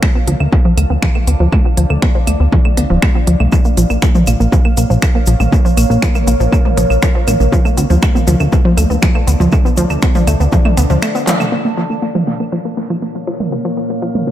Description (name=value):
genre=melodic techno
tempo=120 BPM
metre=4/4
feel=straight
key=unclear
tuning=A4 = 440 Hz
part: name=deep dark ambient pad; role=sustained chords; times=0.0-14.3 s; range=Bb3 to A5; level=-22 LUFS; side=equal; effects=chorus, built-in reverb, sidechain pumping
part: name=wide unison pluck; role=arpeggios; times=0.0-14.3 s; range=F3 to Cb4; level=-17 LUFS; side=equal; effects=sidechain pumping, tape echo
part: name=electronic kick drum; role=drums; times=0.0-10.6 s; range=none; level=-13 LUFS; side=equal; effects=none
part: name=techno drum kit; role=drums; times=0.0-14.2 s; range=claves, finger snaps, handclaps, hi-hat, toms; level=-21 LUFS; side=right 2 dB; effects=low-pass filter on cymbals, low-pass filter on perc, low-pass filter on hats, low-pass filter on snare, low-pass filter on toms, low-pass filter on room, dub echo
part: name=plucky analog bass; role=bass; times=0.3-11.0 s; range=D1 to D2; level=-13 LUFS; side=equal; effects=sidechain pumping
part: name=tube shaker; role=percussion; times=3.5-11.5 s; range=none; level=-29 LUFS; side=left 3 dB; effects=none
room=moderate echo chamber reverb, RT60 1.6 s, digital ambience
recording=echo-heavy mix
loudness=-11 LUFS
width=side -12 dB against mid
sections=0.0-11.5 A section; 11.5-14.3 B section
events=filter sweep on synth arpeggio sound 0.0-11.5, 11.5-14.3; break 11.0-11.5; drum fill 11.3; band accent 11.3; filter sweep on drum 11.5-14.3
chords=0.0 Dm; 3.5 Bbm; 7.5 Dm; 11.5 Bbm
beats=0.03 0.53 1.02 | 1.52 2.02 2.52 3.02 | 3.52 4.03 4.53 5.03 | 5.53 6.03 6.53 7.03 | 7.53 8.03 8.53 9.03 | 9.53 10.03 10.53 11.03 | 11.53 12.03 12.53 13.03 | 13.53 14.03